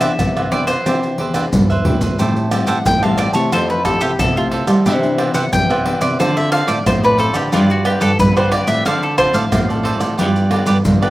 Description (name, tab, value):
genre	samba and choro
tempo	90 BPM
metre	4/4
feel	straight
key	C major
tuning	A4 = 440 Hz
part	bowl-back mandolin	melody	0.0-11.0 s	F4 to G5	-18 LUFS	equal	slapback echo
part	cavaquinho	accompaniment	0.0-11.1 s	F4 to A5	-22 LUFS	right 3 dB	slapback echo
part	nylon-string guitar	accompaniment	0.0-11.1 s	G2 to B4	-23 LUFS	left 3 dB	none
part	nylon-string guitar	bass	0.0-11.1 s	E2 to C4	-18 LUFS	equal	none
part	maracas, surdo, pandeiro and tamborim	percussion	0.0-11.1 s	none	-20 LUFS	equal	none
room	little or no reverb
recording	recorded outdoors, with no room sound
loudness	-13 LUFS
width	side -16 dB against mid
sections	0.0-2.2 A section; 2.2-11.1 B section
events	drum fill 1.4-2.2; mandolin solo 2.2-11.1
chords	0.0 Cmaj9; 2.2 Am7; 3.5 Fmaj9; 4.9 Cmaj9; 6.2 Dm7; 7.5 G7; 8.9 Dm7; 10.2 G9